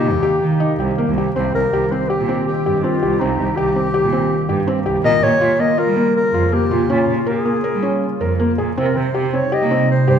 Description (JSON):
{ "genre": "contemporary instrumental, chamber music in an uneven meter", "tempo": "161 BPM", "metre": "5/4", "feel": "straight", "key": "C phrygian", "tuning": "A4 = 440 Hz", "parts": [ { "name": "warm clarinet", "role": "melody", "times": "0.0-10.2 s", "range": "Eb4 to Eb5", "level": "-19 LUFS", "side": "left 4 dB", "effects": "none" }, { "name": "evolving wavetable pad", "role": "sustained chords", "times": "0.0-10.2 s", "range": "C3 to G4", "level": "-23 LUFS", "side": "right 1 dB", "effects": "ensemble chorus, built-in reverb" }, { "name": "felt-muted upright piano", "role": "arpeggios", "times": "0.0-10.2 s", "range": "Bb3 to Bb4", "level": "-20 LUFS", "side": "equal", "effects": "none" }, { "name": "rich cello", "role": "bass", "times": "0.0-10.2 s", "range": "C2 to Bb3", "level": "-21 LUFS", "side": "right 4 dB", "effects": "none" } ], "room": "wet recital hall reverb, RT60 1.4 s", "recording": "minimal, uncompressed stereo recording", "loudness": "-15 LUFS", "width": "side -8 dB against mid", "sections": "0.0-1.4 A section; 1.4-10.2 B section", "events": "none", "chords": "0.0 Cm; 5.0 Bbm; 8.8 Cm" }